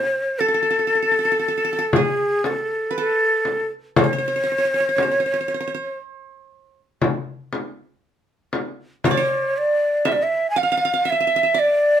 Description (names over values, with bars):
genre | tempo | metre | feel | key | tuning
Arabic maqam ensemble | 118 BPM (eighths) | 10/8 | straight | A maqam suznak | A4 = 440 Hz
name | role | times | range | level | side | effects
breathy ney | melody | 0.0-12.0 s | G#4-26c to G#5 | -18 LUFS | equal | none
qanun | second line | 0.0-12.0 s | G#4 to F5+20c | -27 LUFS | right 7 dB | none
frame drum | percussion | 1.9-10.3 s | none | -21 LUFS | left 3 dB | none
room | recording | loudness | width
moderate studio reverb, RT60 0.6 s | minimal, uncompressed stereo recording | -18 LUFS | side -9 dB against mid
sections
0.0-12.0 A section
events
none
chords
none